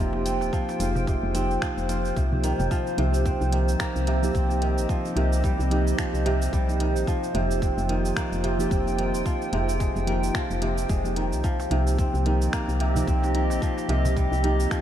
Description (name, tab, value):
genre	organic downtempo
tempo	110 BPM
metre	4/4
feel	swing 58% on 16ths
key	unclear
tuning	A4 = 440 Hz
part	muted felt-like synth keys	accompaniment	0.0-14.8 s	F3 to Bb4	-30 LUFS	right 2 dB	chorus, sidechain pumping, tape echo
part	warbly tape-like pad	sustained chords	0.0-14.8 s	C4 to G5	-31 LUFS	equal	chorus, built-in reverb, sidechain pumping
part	kora	arpeggios	0.0-14.8 s	C3 to F4	-30 LUFS	right 1 dB	tape echo
part	woody FM bass	bass	0.0-14.7 s	Eb1 to C2	-25 LUFS	equal	tube saturation, sidechain pumping
part	darbuka	percussion	0.1-2.7, 11.6-14.1 s	none	-37 LUFS	right 1 dB	none
part	organic electronic drum kit	drums	0.3-14.8 s	finger snaps, hi-hat, shaker	-36 LUFS	right 1 dB	studio ambience
part	electronic kick drum	drums	0.5-14.8 s	none	-27 LUFS	equal	studio ambience
room	moderate cathedral reverb, RT60 5.5 s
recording	dreamy mix soaked in reverb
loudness	-22 LUFS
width	side -10 dB against mid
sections	0.0-2.7 A section; 2.7-14.8 B section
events	none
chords	0.0 Fm7; 2.7 Cm7; 7.1 Fm7; 11.4 Cm7